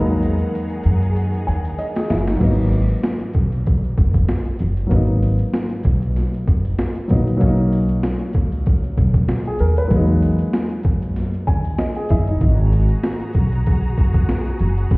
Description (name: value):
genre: hip hop, boom-bap hip-hop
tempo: 96 BPM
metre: 4/4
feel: swing 55% on 16ths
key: G# minor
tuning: A4 = 443 Hz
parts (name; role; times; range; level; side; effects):
- dark grand piano; accompaniment; 0.0-12.4 s; F#3 to G#5; -23 LUFS; left 1 dB; none
- muted studio string section; sustained chords; 0.0-2.4, 12.4-15.0 s; D#3 to B5; -30 LUFS; equal; none
- upright bass; bass; 0.0-15.0 s; F#1 to F#2; -19 LUFS; equal; none
- boom bap sampler-style drum kit; drums; 0.1-15.0 s; crash cymbal, hi-hat, kick drum, snare drum; -19 LUFS; equal; overdrive
room: small room reverb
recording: heard muffled through a wall, stone room reverb, vinyl crackle, EQ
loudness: -16 LUFS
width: side -26 dB against mid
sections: 0.0-2.4 A section; 2.4-15.0 A section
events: drum fill 0.0-2.4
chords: 0.0 Emaj9#11; 2.4 G#m9; 7.4 Bmaj7; 9.9 Emaj9#11; 12.4 G#m9